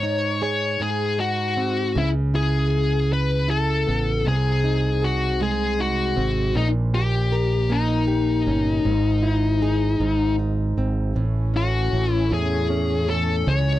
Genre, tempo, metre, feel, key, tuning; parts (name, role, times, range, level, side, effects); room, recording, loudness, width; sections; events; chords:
pop; 52 BPM (dotted quarters); 6/8; straight; A4 = 441 Hz
high-gain lead guitar; melody; 0.0-13.8 s; D#4 to C#5; -23 LUFS; left 4 dB; distortion
nylon-string guitar; accompaniment; 0.0-13.8 s; G#2 to A#4; -24 LUFS; right 2 dB
fretless electric bass; bass; 2.0-13.8 s; G1 to E2; -24 LUFS; equal; ensemble chorus
dark studio string section; sustained chords; 11.2-13.8 s; E3 to C#4; -31 LUFS; equal
little or no reverb; dry, close 1970s-style studio recording; -19 LUFS; side -14 dB against mid
0.0-11.2 A section; 11.2-13.8 B section
0.0 G#sus4; 0.8 G#; 2.0 C#m7; 4.3 G#/B#; 6.6 D#7/A#; 8.8 Emaj7/G#; 10.0 G#; 11.2 A